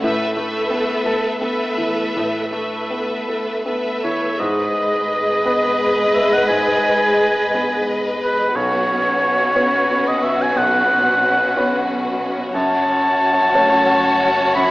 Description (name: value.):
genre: cinematic, emotional film score for orchestra.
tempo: 53-61 BPM (dotted quarters).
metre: 6/8.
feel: rubato.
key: unclear.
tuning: A4 = 442 Hz.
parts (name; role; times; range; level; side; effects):
rich studio violin section; second line; 0.0-14.7 s; F#4 to E5; -23 LUFS; left 1 dB; none.
clear concert grand piano; accompaniment; 0.0-14.7 s; B1 to C#5; -23 LUFS; equal; none.
warm studio viola section; accompaniment; 0.0-14.7 s; A3 to A4; -24 LUFS; equal; none.
warm studio cello section; bass; 0.0-14.7 s; F#2 to B2; -30 LUFS; right 1 dB; none.
warm oboe; second line; 4.0-14.7 s; B4 to B5; -17 LUFS; equal; none.
dark studio violin section; melody; 4.4-14.7 s; B4 to D#5; -24 LUFS; left 1 dB; none.
rich studio double bass section; bass; 4.4-14.7 s; F#1 to B1; -37 LUFS; equal; none.
room: moderate scoring stage reverb, RT60 1.7 s.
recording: AM radio sound.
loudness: -15 LUFS.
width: side -19 dB against mid.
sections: 0.0-4.4 A section; 4.4-14.7 B section.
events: none.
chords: 0.0 Asus2; 4.4 G#m; 8.5 Bsus2; 12.5 F#m.